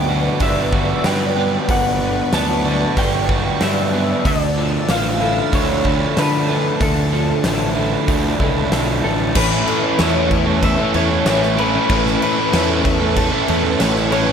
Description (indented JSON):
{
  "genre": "rock, shoegaze and dream pop",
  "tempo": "94 BPM",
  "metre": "4/4",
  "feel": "straight",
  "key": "A mixolydian",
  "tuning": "A4 = 439 Hz",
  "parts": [
    { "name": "electric guitar through a small old amp", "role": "melody", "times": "0.0-14.3 s", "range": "A4 to A5", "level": "-23 LUFS", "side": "left 1 dB", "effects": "analog chorus, tape echo" },
    { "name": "string machine, violas", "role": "sustained chords", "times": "0.0-14.3 s", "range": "D4 to E6", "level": "-26 LUFS", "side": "equal", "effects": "ensemble chorus" },
    { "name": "picked twelve-string acoustic guitar", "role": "arpeggios", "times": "0.0-14.3 s", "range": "A3 to E5", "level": "-32 LUFS", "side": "left 8 dB", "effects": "none" },
    { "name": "crunchy overdriven guitar", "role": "riff", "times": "0.0-14.3 s", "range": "G2 to E4", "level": "-23 LUFS", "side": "left 8 dB", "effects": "analog chorus" },
    { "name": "crunchy overdriven guitar", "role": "riff", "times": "0.0-14.3 s", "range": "A2 to A4", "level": "-22 LUFS", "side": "right 12 dB", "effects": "reverse reverb" },
    { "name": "fuzz picked electric bass", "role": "bass", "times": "0.0-14.3 s", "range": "G1 to D3", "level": "-22 LUFS", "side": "equal", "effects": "overdrive" },
    { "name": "huge arena drum kit", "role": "drums", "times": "0.4-14.3 s", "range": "crash cymbal, hi-hat, kick drum, snare drum", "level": "-22 LUFS", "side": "equal", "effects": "none" },
    { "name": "distorted electric guitar", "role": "riff", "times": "9.3-14.3 s", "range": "A2 to E4", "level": "-24 LUFS", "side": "equal", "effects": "overdrive" }
  ],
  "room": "light reverb, small room ambience",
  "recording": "none",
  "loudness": "-15 LUFS",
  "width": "side -7 dB against mid",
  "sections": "0.0-9.4 A section; 9.4-14.3 B section",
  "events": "none",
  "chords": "0.0 Gmaj7; 4.3 Dmadd9; 9.4 Aadd9"
}